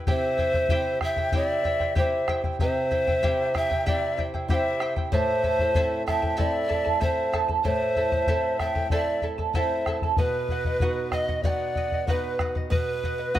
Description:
andean folk, Andean ensemble; 95 BPM; 4/4; straight; A4 = 440 Hz
charango; accompaniment; 0.0-13.4 s; E4 to A5; -31 LUFS; right 5 dB
hollow polished pan flute; melody; 0.1-13.4 s; B4 to E5; -27 LUFS; right 1 dB
breathy hollow large quena; second line; 0.1-13.4 s; B4 to G5; -31 LUFS; left 4 dB
flamenco guitar; accompaniment; 0.1-13.4 s; A2 to A4; -33 LUFS; right 2 dB
bombo; percussion; 0.1-13.4 s; -28 LUFS; left 2 dB
light reverb; close, detailed microphones; -22 LUFS; side -13 dB against mid
0.1-13.4 A section
0.1 C; 5.1 Am; 10.2 B

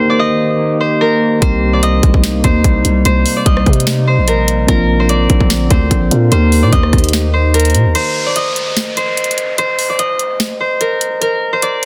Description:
hip hop, trap; 147 BPM; 4/4; half-time; A4 = 436 Hz
concert harp; melody; 0.0-11.9 s; Bb4 to Eb5; -18 LUFS; equal; low-pass filter, tape echo
mellow tine electric piano; accompaniment; 0.0-8.0 s; Bb3 to Bb4; -21 LUFS; equal; low-pass filter
warbly tape-like pad; sustained chords; 0.0-7.9 s; C3 to G4; -25 LUFS; equal; chorus, built-in reverb
growling 808-style bass; bass; 1.4-7.9 s; Bb1 to C3; -16 LUFS; equal
trap drum kit; drums; 1.4-11.9 s; hi-hat, kick drum, rim click, snare drum; -17 LUFS; equal
downlifter; sound effects; 8.0-11.2 s; -27 LUFS; equal
light reverb, digital ambience; dense, heavily limited modern master; -13 LUFS; mono
0.0-8.0 A section; 8.0-11.9 B section
break 8.0-11.9
0.0 Eb; 1.4 Cm7; 4.7 Bbadd9; 6.3 Eb; 8.0 N.C.

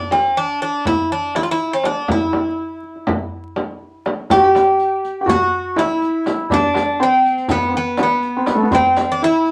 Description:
Turkish makam ensemble; 244 BPM (eighths); 9/8; straight; E makam nihavent from 4.3 s; A4 = 435 Hz
Greek bouzouki; melody; 0.0-9.5 s; B3 to G4; -20 LUFS; equal
darbuka; percussion; 0.1-9.3 s; -29 LUFS; equal
frame drum; percussion; 0.1-9.1 s; -26 LUFS; equal
felt-muted upright piano; second line; 4.3-9.5 s; A3 to G4; -20 LUFS; equal
riq; percussion; 4.3-9.5 s; -32 LUFS; equal
wet studio reverb, RT60 0.6 s; vinyl crackle; -18 LUFS; mono
0.0-4.3 A section; 4.3-9.5 B section

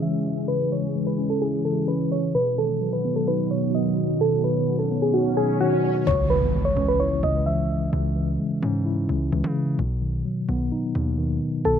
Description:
hip hop; 129 BPM; 4/4; half-time; C# minor; A4 = 440 Hz
soft electric-piano-like synth keys; melody; 0.0-7.9, 11.7-11.8 s; F#4 to E5; -24 LUFS; right 1 dB; chorus, low-pass filter, digital delay
mellow tine electric piano; accompaniment; 0.0-11.8 s; B2 to E4; -25 LUFS; left 1 dB; medium stereo tremolo, low-pass filter
ethereal airy pad; sustained chords; 0.0-6.0 s; D#3 to G#4; -28 LUFS; right 2 dB; ensemble chorus, built-in reverb
swell and impact; sound effects; 4.6-7.9 s; -30 LUFS; equal
hard-hitting 808-style bass; bass; 6.1-11.8 s; B1 to C#3; -26 LUFS; equal
little or no reverb; rough home demo mix, low-pass filter; -21 LUFS; side -8 dB against mid
0.0-6.1 A section; 6.1-11.8 B section
filter sweep 0.0-6.1; swell 4.6-6.1; impact 6.1-7.9; break 7.9-11.7
0.0 C#m; 2.3 B; 6.1 C#m; 9.8 B

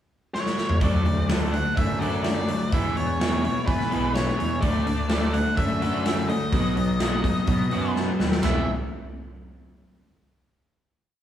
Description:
indie rock; 126 BPM; 4/4; straight; E mixolydian; A4 = 441 Hz
octave-fuzz lead guitar; melody; 0.3-8.7 s; B4 to F#5; -30 LUFS; equal; distortion, slapback echo
big rock drum kit; drums; 0.3-8.6 s; hi-hat, kick drum, ride cymbal, snare drum, toms; -26 LUFS; equal
crunchy overdriven guitar; riff; 0.8-8.6 s; E3 to G#4; -30 LUFS; left 5 dB; tremolo
crunchy overdriven guitar; riff; 0.8-8.6 s; E2 to E4; -27 LUFS; right 2 dB
fuzz picked electric bass; bass; 0.8-8.7 s; E1 to E3; -29 LUFS; equal; overdrive
moderate large studio reverb, RT60 1.4 s; band playing live in one room, small room ambience; -21 LUFS; side -10 dB against mid
0.0-0.8 pickup bar; 0.8-8.4 pre-chorus; 8.4-10.4 final chord
drum fill 0.3-0.8, 8.0-8.4
0.0 N.C.; 0.8 D; 2.7 E; 4.6 D; 6.5 B; 8.4 E

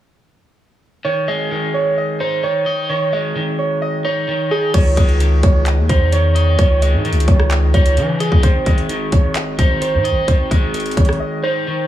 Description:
hip hop, trap; 130 BPM; 4/4; half-time; C# harmonic minor; A4 = 444 Hz
muted felt-like synth keys; melody; 1.0-11.9 s; G#4 to D#5; -20 LUFS; right 3 dB; chorus, tape echo
electric guitar at the edge of break-up; accompaniment; 1.0-11.9 s; C#3 to D#5; -21 LUFS; left 2 dB
hard-hitting 808-style bass; bass; 4.7-11.2 s; G#1 to E3; -16 LUFS; equal
trap drum kit; drums; 4.7-11.2 s; crash cymbal, handclaps, hi-hat, kick drum, rim click; -15 LUFS; equal
little or no reverb; heavily compressed radio sound, multiband compression, small room ambience; -14 LUFS; side -12 dB against mid
1.0-4.7 A section; 4.7-11.9 B section
break 11.2-11.9
1.0 C#sus2; 8.4 G#

